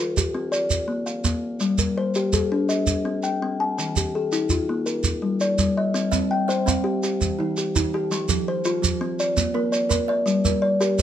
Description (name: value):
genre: southern african traditional, mbira-style interlocking cycle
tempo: 111 BPM (dotted quarters)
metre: 12/8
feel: straight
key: C equiheptatonic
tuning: A4 = 440 Hz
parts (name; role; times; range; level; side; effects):
- kalimba; arpeggios; 0.0-11.0 s; Eb3+43c to A5-43c; -22 LUFS; left 2 dB; none
- shekere; percussion; 0.2-11.0 s; none; -24 LUFS; right 3 dB; none
- kalimba; arpeggios; 6.1-11.0 s; Eb3+43c to Eb5+43c; -27 LUFS; right 8 dB; none
room: light reverb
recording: none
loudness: -20 LUFS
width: side -10 dB against mid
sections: 0.0-6.0 A section; 6.0-11.0 A section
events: none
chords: 0.0 F; 0.5 Bb; 1.6 Gm; 2.7 Cm; 3.8 Eb; 4.9 Gm; 6.0 Cm; 7.0 Eb; 8.1 F; 9.2 Bb; 10.3 Gm